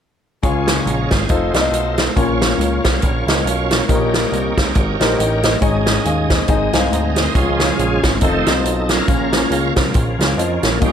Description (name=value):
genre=uptempo gospel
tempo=139 BPM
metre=4/4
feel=swing 58% on 8ths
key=Db major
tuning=A4 = 440 Hz
part: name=warm concert grand piano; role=accompaniment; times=0.4-10.9 s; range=Ab2 to Ab5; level=-21 LUFS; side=left 4 dB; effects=none
part: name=bright tonewheel organ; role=sustained chords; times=0.4-10.9 s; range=Eb3 to C6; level=-22 LUFS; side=right 3 dB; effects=chorus vibrato, slow rotary speaker
part: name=fat analog bass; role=bass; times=0.4-10.9 s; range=F1 to F2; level=-21 LUFS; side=equal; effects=none
part: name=swinging big-band drum kit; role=drums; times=0.4-10.9 s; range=hi-hat, kick drum, snare drum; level=-18 LUFS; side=right 1 dB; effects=none
room=light reverb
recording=none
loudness=-14 LUFS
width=side -8 dB against mid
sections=0.4-7.4 A section; 7.4-10.9 B section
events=tonewheel organ solo 7.4-10.9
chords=0.4 Db; 1.3 F7; 2.2 Bbm; 3.9 Eb7/Bb; 5.6 Absus4; 6.5 Ab; 7.4 Db; 8.2 F7; 9.1 Bbm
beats=| 0.44 0.87 1.30 1.73 | 2.16 2.60 3.03 3.46 | 3.89 4.32 4.76 5.19 | 5.62 6.05 6.49 6.92 | 7.35 7.79 8.22 8.65 | 9.08 9.52 9.95 10.38 | 10.81